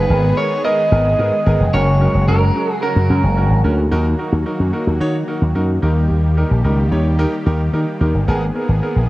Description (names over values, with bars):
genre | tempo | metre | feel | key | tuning
pop | 110 BPM | 4/4 | straight | Eb minor | A4 = 442 Hz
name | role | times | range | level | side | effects
electric guitar at the edge of break-up | melody | 0.0-3.6 s | Bb4 to Eb5 | -19 LUFS | right 2 dB | cassette tape
soft supersaw | sustained chords | 0.0-9.1 s | Db3 to Ab4 | -23 LUFS | left 1 dB | none
slap bass with an envelope filter | bass | 0.0-9.1 s | F1 to Eb3 | -15 LUFS | equal | none
clear concert grand piano | accompaniment | 0.1-9.0 s | Cb4 to Db5 | -23 LUFS | right 1 dB | none
room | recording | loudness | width
little or no reverb | home recording on cassette | -14 LUFS | side -18 dB against mid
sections
0.0-3.9 A section; 3.9-9.1 B section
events
none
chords
0.0 Abmadd9; 1.7 Gb; 3.9 Ebm; 5.8 Eb; 8.3 Abmadd9